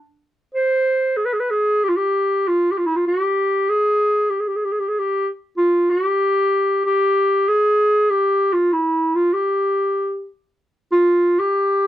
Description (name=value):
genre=turkish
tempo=96 BPM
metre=4/4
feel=straight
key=G makam hicaz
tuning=A4 = 440 Hz
part: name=warm clarinet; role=solo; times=0.5-11.9 s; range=E4-40c to C5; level=-16 LUFS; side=equal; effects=none
room=light reverb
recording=dry, close 1970s-style studio recording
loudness=-16 LUFS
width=side -12 dB against mid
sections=0.0-10.6 A section; 10.6-11.9 B section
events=none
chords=none